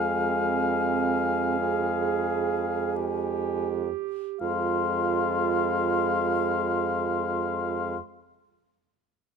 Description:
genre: classical, slow romantic movement for wind quintet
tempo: free time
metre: none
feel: none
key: F minor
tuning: A4 = 440 Hz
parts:
  - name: mellow hollow concert flute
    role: melody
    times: 0.0-8.0 s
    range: Ab5 to C6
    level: -31 LUFS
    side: left 9 dB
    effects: none
  - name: warm oboe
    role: second line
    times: 0.0-8.0 s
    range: F5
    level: -29 LUFS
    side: left 5 dB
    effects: none
  - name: clear clarinet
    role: accompaniment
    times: 0.0-8.0 s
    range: C4 to Ab4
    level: -31 LUFS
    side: right 14 dB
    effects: none
  - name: warm French horn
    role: accompaniment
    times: 0.0-8.0 s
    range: Ab3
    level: -34 LUFS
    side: right 4 dB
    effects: none
  - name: mellow bassoon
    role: bass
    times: 0.0-8.0 s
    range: F2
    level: -30 LUFS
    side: right 4 dB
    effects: none
room: light reverb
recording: close, detailed microphones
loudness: -24 LUFS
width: side -6 dB against mid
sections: 0.0-4.4 A section; 4.4-9.4 B section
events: slowing down 0.0-4.4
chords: 0.0 Fm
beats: free time

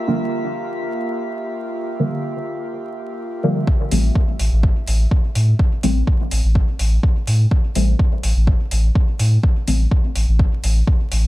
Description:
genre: dub techno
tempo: 125 BPM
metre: 4/4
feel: straight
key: A phrygian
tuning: A4 = 439 Hz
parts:
  - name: airy breathy pad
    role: sustained chords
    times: 0.0-3.6 s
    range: Bb3 to G4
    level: -27 LUFS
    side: equal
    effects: chorus, sidechain pumping
  - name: drifting glass-harmonics texture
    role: texture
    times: 0.0-3.7 s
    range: E5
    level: -32 LUFS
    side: right 2 dB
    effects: chorus, built-in reverb, sidechain pumping
  - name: deep mellow chord stab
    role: stabs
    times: 0.1-9.9 s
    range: D3 to C4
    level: -23 LUFS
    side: equal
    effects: chorus, phaser, sidechain pumping, dub echo
  - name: electronic kick drum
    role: drums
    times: 3.7-11.0 s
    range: none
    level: -16 LUFS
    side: equal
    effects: overdrive
  - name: soft dub sub bass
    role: bass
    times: 3.9-11.3 s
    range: A1 to A2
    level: -16 LUFS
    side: equal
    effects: sidechain pumping
  - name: electronic hi-hat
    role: drums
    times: 3.9-11.2 s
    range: none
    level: -28 LUFS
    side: equal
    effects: overdrive, low-pass filter on hats, low-pass filter on room
room: little or no reverb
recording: dark, warm production, vinyl crackle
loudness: -16 LUFS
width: side -17 dB against mid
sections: 0.0-3.7 A section; 3.7-11.3 B section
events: filter sweep on synth stab 3.7-11.3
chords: 0.0 Gm7; 3.7 Am7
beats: 0.32 0.80 1.27 | 1.75 2.23 2.71 3.19 | 3.67 4.16 4.63 5.12 | 5.59 6.08 6.55 7.04 | 7.51 8.00 8.47 8.96 | 9.44 9.91 10.39 10.88

